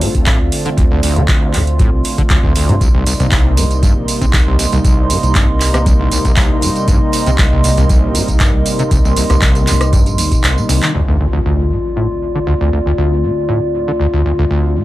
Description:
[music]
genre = acid house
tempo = 118 BPM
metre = 4/4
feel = straight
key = D phrygian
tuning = A4 = 440 Hz
[part]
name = warm analog pad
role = sustained chords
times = 0.0-14.8 s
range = C3 to F4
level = -21 LUFS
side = right 1 dB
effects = chorus, sidechain pumping
[part]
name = overdriven acid bass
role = riff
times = 0.0-14.8 s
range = C2 to Eb3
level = -16 LUFS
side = equal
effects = tube saturation, analog chorus, cassette tape, sidechain pumping
[part]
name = booming analog drum machine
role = drums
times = 0.0-10.9 s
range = handclaps, hi-hat, rim click, tambourine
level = -19 LUFS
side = right 1 dB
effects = overdrive, low-pass filter on hats, low-pass filter on cymbals, low-pass filter on snare, low-pass filter on perc, low-pass filter on room
[part]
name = warbly tape-like pad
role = texture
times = 0.0-14.8 s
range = F4 to C6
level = -21 LUFS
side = equal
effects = chorus, built-in reverb, sidechain pumping
[part]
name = round analog bass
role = bass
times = 0.1-14.8 s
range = Bb1 to G2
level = -18 LUFS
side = equal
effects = sidechain pumping
[part]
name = electronic kick drum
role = drums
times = 0.1-10.4 s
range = none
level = -14 LUFS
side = equal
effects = overdrive
[part]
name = impact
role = sound effects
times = 10.9-13.0 s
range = none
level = -22 LUFS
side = equal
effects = none
[sound]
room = light reverb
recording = none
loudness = -11 LUFS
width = side -16 dB against mid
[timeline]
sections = 0.0-10.9 A section; 10.9-14.8 B section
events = fade-in on ambient pad 0.0-10.9; drum fill 10.4-10.9; impact 10.9-13.0; filter sweep on acid bass 10.9-14.8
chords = 0.0 Dm7; 2.8 Cm7; 10.9 Dm7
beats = 0.27 | 0.78 1.28 1.79 2.30 | 2.81 3.32 3.83 4.34 | 4.84 5.35 5.86 6.37 | 6.88 7.39 7.89 8.40 | 8.91 9.42 9.93 10.44 | 10.95 11.46 11.96 12.47 | 12.98 13.49 14.00 14.51

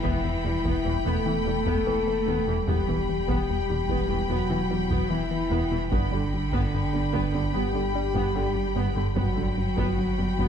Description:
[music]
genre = cinematic, hybrid orchestral and electronic film score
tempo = 74 BPM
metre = 4/4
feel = straight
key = E minor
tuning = A4 = 440 Hz
[part]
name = rich symphonic violin section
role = melody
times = 0.0-10.5 s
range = B5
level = -37 LUFS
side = left 4 dB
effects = none
[part]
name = warm symphonic violin section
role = second line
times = 0.0-10.5 s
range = G5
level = -36 LUFS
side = left 4 dB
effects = none
[part]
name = dark symphonic viola section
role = accompaniment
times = 0.0-10.5 s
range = D3 to B3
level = -33 LUFS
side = right 2 dB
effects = none
[part]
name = mellow French horn section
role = sustained chords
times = 0.0-10.5 s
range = D4 to A4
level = -30 LUFS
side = left 5 dB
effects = none
[part]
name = soft round pluck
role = arpeggios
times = 0.0-10.5 s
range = E3 to D4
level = -37 LUFS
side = right 5 dB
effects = none
[part]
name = plucky analog bass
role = riff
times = 0.0-10.5 s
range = E2 to G3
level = -31 LUFS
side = left 2 dB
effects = none
[part]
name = rich symphonic cello section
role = bass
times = 0.0-10.5 s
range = D3 to A3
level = -32 LUFS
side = right 4 dB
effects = none
[part]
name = saturated sub bass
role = bass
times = 0.0-10.5 s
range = E1 to G1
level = -33 LUFS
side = equal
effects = none
[part]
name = warm studio double bass section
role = bass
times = 0.0-10.5 s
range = E1 to G1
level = -34 LUFS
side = right 4 dB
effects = none
[part]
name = taiko ensemble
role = drums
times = 0.0-10.5 s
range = none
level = -33 LUFS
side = equal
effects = none
[part]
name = impact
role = sound effects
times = 0.0-2.7 s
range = none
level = barely audible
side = none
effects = none
[sound]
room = moderate scoring stage reverb, RT60 1.8 s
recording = dark, warm production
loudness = -23 LUFS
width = side -8 dB against mid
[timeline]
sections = 0.0-10.5 A section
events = impact 0.0-2.7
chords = 0.0 Em; 5.9 G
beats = 0.24 1.05 1.87 | 2.68 3.49 4.30 5.11 | 5.92 6.73 7.54 8.35 | 9.16 9.97

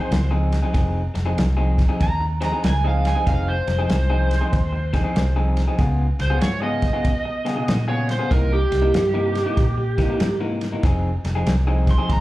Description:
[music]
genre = electric blues shuffle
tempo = 95 BPM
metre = 4/4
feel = swing 65% on 8ths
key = F minor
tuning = A4 = 440 Hz
[part]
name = overdriven slide guitar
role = second line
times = 0.0-12.2 s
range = G4 to C6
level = -24 LUFS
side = right 2 dB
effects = slapback echo
[part]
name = electric guitar through a small old amp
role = riff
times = 0.0-12.2 s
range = C3 to Ab4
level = -26 LUFS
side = left 2 dB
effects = slapback echo
[part]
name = vintage muted fingered electric bass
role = bass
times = 0.1-12.2 s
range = F1 to Cb3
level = -22 LUFS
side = equal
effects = none
[part]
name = warm soul drum kit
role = drums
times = 0.1-12.2 s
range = kick drum, ride cymbal, snare drum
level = -24 LUFS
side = equal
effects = none
[sound]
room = studio reverb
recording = live gig heard through the venue's PA, club ambience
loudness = -18 LUFS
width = side -16 dB against mid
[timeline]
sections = 0.0-12.2 A section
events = electric slide guitar solo 0.0-12.2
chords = 0.0 Fm7; 5.8 Db7; 8.3 C7#9; 10.8 Fm7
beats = 0.12 | 0.75 1.38 2.01 2.64 | 3.27 3.90 4.53 5.16 | 5.79 6.42 7.05 7.68 | 8.31 8.94 9.57 10.20 | 10.83 11.46 12.09

